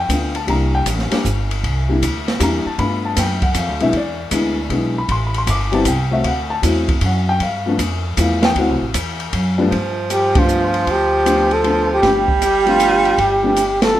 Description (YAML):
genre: jazz, small-group swing and bop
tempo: 156 BPM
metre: 3/4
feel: swing 66% on 8ths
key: G mixolydian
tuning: A4 = 440 Hz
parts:
  - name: warm upright piano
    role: accompaniment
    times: 0.0-14.0 s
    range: G2 to D6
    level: -20 LUFS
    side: left 2 dB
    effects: none
  - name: upright bass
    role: bass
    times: 0.0-14.0 s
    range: G1 to G2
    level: -21 LUFS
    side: equal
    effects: none
  - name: open jazz drum kit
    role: drums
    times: 0.1-13.9 s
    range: hi-hat, kick drum, ride cymbal, snare drum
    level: -22 LUFS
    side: equal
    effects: none
  - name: warm baritone saxophone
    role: second line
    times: 9.7-13.9 s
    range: F3 to G3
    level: -18 LUFS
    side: right 4 dB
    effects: none
  - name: mellow flugelhorn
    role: melody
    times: 10.1-14.0 s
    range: F4 to A4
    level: -16 LUFS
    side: equal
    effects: none
room: light reverb, studio ambience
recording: rough home demo mix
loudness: -15 LUFS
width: side -13 dB against mid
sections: 0.0-9.7 A section; 9.7-14.0 B section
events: band accent 10.3, 13.8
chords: 0.5 C7; 2.8 G7; 3.9 E7; 5.1 Am7; 6.3 D7; 7.4 G7; 8.6 D7; 9.7 G7